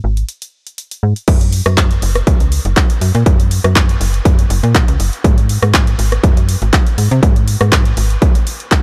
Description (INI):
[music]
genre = filtered disco house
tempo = 121 BPM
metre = 4/4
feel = swing 53% on 16ths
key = Gb lydian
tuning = A4 = 440 Hz
[part]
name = slap-like FM bass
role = bass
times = 0.0-8.2 s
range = Gb1 to C3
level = -17 LUFS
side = equal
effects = sidechain pumping, low-pass filter
[part]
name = punchy analog drum machine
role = drums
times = 0.2-8.8 s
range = crash cymbal, handclaps, hi-hat, rim click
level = -21 LUFS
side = equal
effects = overdrive, sidechain pumping on hats, small room ambience, sidechain pumping on cymbals
[part]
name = electronic kick drum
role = drums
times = 1.3-8.8 s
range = none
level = -14 LUFS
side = equal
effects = overdrive, small room ambience
[sound]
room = little or no reverb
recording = none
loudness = -13 LUFS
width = mono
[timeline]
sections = 0.0-1.3 A section; 1.3-8.8 B section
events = filter sweep on FM bass 0.0-1.3; drop 1.3-8.8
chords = none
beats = 0.29 0.78 | 1.28 1.77 2.27 2.77 | 3.26 3.76 4.25 4.75 | 5.25 5.74 6.24 6.73 | 7.23 7.72 8.22 8.72